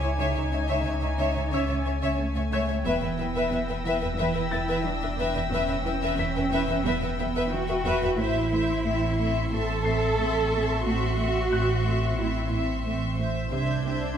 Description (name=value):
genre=cinematic, suspense film score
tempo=90 BPM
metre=4/4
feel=straight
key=unclear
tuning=A4 = 440 Hz
part: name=warm symphonic violin section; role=melody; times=0.0-14.2 s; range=E5 to G#5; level=-37 LUFS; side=left 3 dB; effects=none
part: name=warm symphonic violin section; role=second line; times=0.0-14.2 s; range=E5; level=-32 LUFS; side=left 4 dB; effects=none
part: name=dark symphonic viola section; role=accompaniment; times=0.0-14.2 s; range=C4 to C#5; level=-33 LUFS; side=equal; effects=none
part: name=rich symphonic cello section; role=riff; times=0.0-14.1 s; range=E2 to C#4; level=-34 LUFS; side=right 2 dB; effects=none
part: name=dark symphonic cello section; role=bass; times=0.0-14.2 s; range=A3 to A4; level=-29 LUFS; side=right 2 dB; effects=none
part: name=dark symphonic double bass section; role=bass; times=0.0-14.1 s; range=A1 to E2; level=-32 LUFS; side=right 3 dB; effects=none
part: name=punchy sub bass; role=drone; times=0.0-14.2 s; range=E1 to C#2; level=-32 LUFS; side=left 1 dB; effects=none
part: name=clear concert grand piano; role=texture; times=0.0-13.5 s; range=G#4 to C7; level=-40 LUFS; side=left 3 dB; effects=none
part: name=dark studio violin section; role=texture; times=0.0-14.2 s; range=C6 to A#6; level=-38 LUFS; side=left 5 dB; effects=none
room=moderate concert hall reverb, RT60 1.7 s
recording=none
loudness=-24 LUFS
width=side -8 dB against mid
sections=0.0-14.2 A section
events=none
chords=0.0 C#m; 2.9 Em; 8.2 Am; 13.5 Cadd9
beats=| 0.19 0.85 1.52 2.19 | 2.85 3.52 4.19 4.85 | 5.52 6.19 6.85 7.52 | 8.19 8.85 9.52 10.19 | 10.85 11.52 12.19 12.85 | 13.52